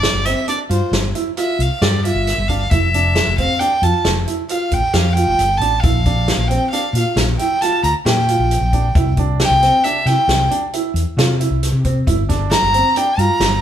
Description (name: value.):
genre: progressive instrumental, band music in an uneven meter.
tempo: 135 BPM.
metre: 7/4.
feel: straight.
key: Bb lydian.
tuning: A4 = 440 Hz.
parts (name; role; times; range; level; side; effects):
rich violin; melody; 0.0-13.6 s; C5 to Bb5; -18 LUFS; right 1 dB; none.
clear baby grand piano; arpeggios; 0.0-13.4 s; C4 to G4; -23 LUFS; right 2 dB; none.
woody fretless electric bass; bass; 0.0-13.6 s; F1 to C3; -18 LUFS; left 1 dB; none.
vintage drum kit; drums; 0.0-13.5 s; hi-hat, kick drum, snare drum; -20 LUFS; equal; none.
room: moderate studio reverb, RT60 1.0 s.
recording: band playing live in one room.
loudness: -14 LUFS.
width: side -10 dB against mid.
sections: 0.0-13.6 A section.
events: violin solo 0.0-13.6.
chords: 0.0 G5; 2.7 Fmaj7(no3); 5.8 Bb; 9.0 C; 12.1 Gm7.